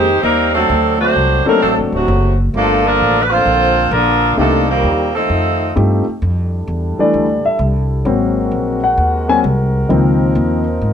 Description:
jazz, big band swing; 130 BPM; 4/4; swing 68% on 8ths; A4 = 444 Hz
clear saxophone section; melody; 0.0-5.8 s; D3 to C5; -14 LUFS; right 1 dB; plate reverb
dark trombone section; second line; 0.0-5.8 s; A2 to G4; -20 LUFS; right 1 dB
warm concert grand piano; accompaniment; 0.0-10.6 s; Eb3 to Ab5; -15 LUFS; left 3 dB
upright bass; bass; 0.0-10.9 s; D1 to Ab2; -17 LUFS; equal
warm trombone section; sustained chords; 6.2-10.9 s; F3 to Bb4; -23 LUFS; equal
moderate club reverb, RT60 0.8 s; -12 LUFS; side -8 dB against mid
0.0-6.2 A section; 6.2-10.9 B section
grand piano solo 6.2-10.9
0.0 Abmaj7; 0.7 D7; 2.5 Gm9; 4.4 Cm7; 5.3 F7; 6.2 Fmaj13; 8.1 Ab9; 9.9 Dbmaj13

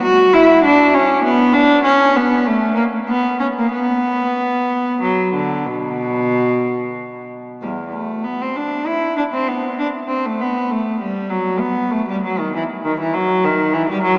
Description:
classical, baroque-style suite movement for unaccompanied cello; 64 BPM (dotted quarters); 12/8; uneven beats, rubato; B minor, E minor from 7.6 s; A4 = 440 Hz
rich cello; solo; 0.0-14.2 s; E2 to F#4; -17 LUFS; equal
wet church reverb, RT60 4.1 s; small speaker sound; -17 LUFS; mono
0.0-7.6 A section; 7.6-14.2 A section

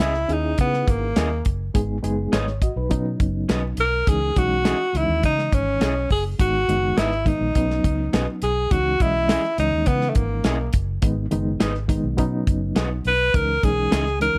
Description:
uptempo 1960s-style soul; 104 BPM; 4/4; straight; C# dorian; A4 = 440 Hz
breathy tenor saxophone; melody; 0.0-14.4 s; A3 to B4; -24 LUFS; equal; plate reverb
reed electric piano; accompaniment; 0.0-14.4 s; D#3 to D#5; -29 LUFS; equal; fast tremolo
electric guitar through a small old amp; stabs; 0.0-14.0 s; C#4 to D#5; -31 LUFS; equal; plate reverb
vintage muted fingered electric bass; bass; 0.0-14.4 s; F#1 to C#3; -28 LUFS; equal
warm soul drum kit; drums; 0.0-14.3 s; hi-hat, kick drum, snare drum; -24 LUFS; equal
light reverb; -22 LUFS; mono
0.0-14.4 A section
0.0 C#madd9; 1.7 G#m; 2.9 Badd9; 4.1 C#madd9; 6.4 G#m; 7.6 Badd9; 8.7 C#madd9; 11.0 G#m; 12.2 Badd9; 13.3 C#madd9

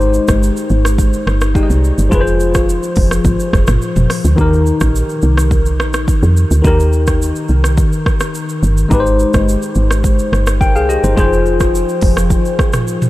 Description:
afrobeats; 106 BPM; 4/4; straight; Eb major; A4 = 440 Hz
tine electric piano; accompaniment; 0.0-13.1 s; Eb3 to G5; -16 LUFS; left 2 dB; phaser
woody FM bass; bass; 0.0-12.4 s; F1 to F2; -14 LUFS; equal
afro-pop drum kit; drums; 0.0-13.1 s; hi-hat, kick drum, rim click, shaker, toms; -16 LUFS; equal
light reverb; -11 LUFS; side -16 dB against mid
0.0-13.1 A section
0.0 Abmaj7; 2.1 Fm; 4.4 Eb; 8.9 Abmaj7; 11.2 Fm

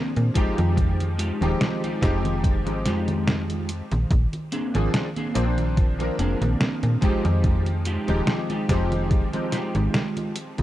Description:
vaporwave; 72 BPM; 4/4; swing 54% on 16ths; F dorian; A4 = 440 Hz
clear electric grand piano; accompaniment; 0.0-10.6 s; F3 to C5; -28 LUFS; left 1 dB; ensemble chorus, tape echo
clean electric guitar; riff; 0.0-10.4 s; Ab3 to Ab4; -30 LUFS; equal; ensemble chorus, vintage 12-bit sampler grit, tape echo
slap-like FM bass; bass; 0.2-10.6 s; Eb1 to Bb2; -24 LUFS; equal; tube saturation
detuned 8-bit digital drum machine; drums; 0.2-10.6 s; congas, hi-hat, snare drum; -28 LUFS; equal; studio reverb
electronic kick drum; drums; 0.4-9.3 s; -21 LUFS; equal; studio reverb
little or no reverb; -21 LUFS; side -14 dB against mid
0.0-10.6 A section
0.4 Fm9; 4.1 Bb9; 7.0 Fm9

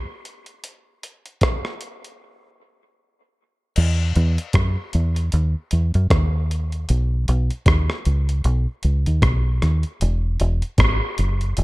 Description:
dub reggae; 77 BPM; 4/4; swing 57% on 16ths; A4 = 441 Hz
breakbeat sampler-style drum kit; drums; 0.3-11.6 s; crash cymbal, hi-hat, kick drum, rim click; -22 LUFS; equal
deep dub fingered electric bass; bass; 3.8-11.6 s; E1 to F#2; -18 LUFS; equal
little or no reverb; -18 LUFS; side -21 dB against mid
0.0-3.8 A section; 3.8-11.6 B section
break 2.2-3.8

